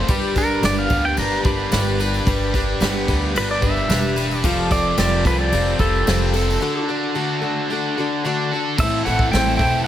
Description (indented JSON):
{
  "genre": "folk rock and heartland rock",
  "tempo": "110 BPM",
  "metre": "4/4",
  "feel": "straight",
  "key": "G mixolydian",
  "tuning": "A4 = 440 Hz",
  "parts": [
    { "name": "picked plugged-in twelve-string acoustic guitar", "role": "accompaniment", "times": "0.0-9.9 s", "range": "A2 to B4", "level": "-24 LUFS", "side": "left 4 dB", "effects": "none" },
    { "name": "crunchy overdriven guitar", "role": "riff", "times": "0.0-9.9 s", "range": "A2 to B4", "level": "-23 LUFS", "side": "right 1 dB", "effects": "none" },
    { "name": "upright bass", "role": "bass", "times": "0.0-9.8 s", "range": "E1 to D2", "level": "-23 LUFS", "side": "equal", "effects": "none" },
    { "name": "soft brush drum kit", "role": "drums", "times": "0.1-9.7 s", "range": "crash cymbal, hi-hat, kick drum, ride cymbal, snare drum", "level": "-23 LUFS", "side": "equal", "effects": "none" },
    { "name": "tambourine", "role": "percussion", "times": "0.1-6.6 s", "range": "none", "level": "-39 LUFS", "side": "right 4 dB", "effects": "none" },
    { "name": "pedal steel guitar", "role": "melody", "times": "0.4-9.9 s", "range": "A4 to B5", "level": "-23 LUFS", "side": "right 1 dB", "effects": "none" }
  ],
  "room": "light reverb",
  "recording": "none",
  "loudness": "-17 LUFS",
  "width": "side -11 dB against mid",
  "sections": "0.0-8.8 A section; 8.8-9.9 B section",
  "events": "pedal steel guitar solo 0.0-8.8; break 6.6-8.8",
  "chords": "0.1 G; 4.4 Fadd9; 6.6 D; 8.8 Am",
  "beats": "| 0.09 0.63 1.18 1.72 | 2.27 2.81 3.36 3.90 | 4.45 4.99 5.53 6.08 | 6.62 7.16 7.70 8.24 | 8.79 9.33 9.87"
}